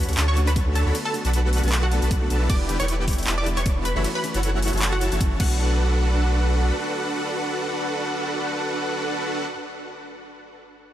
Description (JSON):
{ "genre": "future bass", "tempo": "155 BPM", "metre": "4/4", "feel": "swing 55% on 16ths, half-time", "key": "B minor", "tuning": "A4 = 441 Hz", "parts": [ { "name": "felt-muted upright piano", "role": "accompaniment", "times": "0.0-9.5 s", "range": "D3 to A4", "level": "-33 LUFS", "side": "left 1 dB", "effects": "wide subtle chorus, sidechain pumping, tape echo" }, { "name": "dense compressed supersaw", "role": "riff", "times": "0.0-9.4 s", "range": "D4 to B5", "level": "-26 LUFS", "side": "equal", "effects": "sidechain pumping, tape echo" }, { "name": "saturated sub bass", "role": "bass", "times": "0.0-6.7 s", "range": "E1 to D2", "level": "-22 LUFS", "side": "equal", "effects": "sidechain pumping" }, { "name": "dubstep drum kit", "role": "drums", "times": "0.0-5.5 s", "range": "crash cymbal, handclaps, hi-hat", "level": "-29 LUFS", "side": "equal", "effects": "overdrive" }, { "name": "wide unison pluck", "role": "melody", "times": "0.3-9.5 s", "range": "F#4 to D6", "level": "-30 LUFS", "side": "right 1 dB", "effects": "sidechain pumping, diffuse ambient delay" }, { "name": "electronic kick drum", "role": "drums", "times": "0.6-5.5 s", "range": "none", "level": "-23 LUFS", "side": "equal", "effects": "overdrive" } ], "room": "moderate huge ambient reverb, RT60 4.8 s", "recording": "dreamy mix soaked in reverb", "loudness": "-20 LUFS", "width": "side -12 dB against mid", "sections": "0.0-5.6 A section; 5.6-8.7 B section", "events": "drop 0.0-5.6", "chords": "0.0 Dmaj7; 0.9 Bm7; 2.5 Em7; 3.9 F#m7; 5.4 Bm7" }